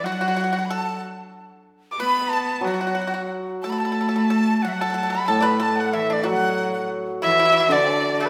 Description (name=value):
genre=chinese traditional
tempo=92 BPM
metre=2/4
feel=rubato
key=unclear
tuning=A4 = 440 Hz
part: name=dark erhu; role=melody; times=0.0-8.3 s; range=A4 to D6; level=-25 LUFS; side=equal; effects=none
part: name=breathy dizi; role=second line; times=0.0-8.3 s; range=D5 to B5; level=-30 LUFS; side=equal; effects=none
part: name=bright cello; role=second line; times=0.0-8.3 s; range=D3 to B3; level=-28 LUFS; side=equal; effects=none
part: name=pipa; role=second line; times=0.1-8.3 s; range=A3 to D5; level=-32 LUFS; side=equal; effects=none
part: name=hammered dulcimer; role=accompaniment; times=2.6-8.3 s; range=A2 to F#3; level=-29 LUFS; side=equal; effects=none
room=moderate scoring stage reverb, RT60 1.9 s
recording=none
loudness=-22 LUFS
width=mono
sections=0.0-8.3 A section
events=none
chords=none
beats=| 0.04 0.69 | 1.33 1.98 | 2.63 3.29 | 3.96 4.63 | 5.28 5.94 | 6.59 7.23 | 7.87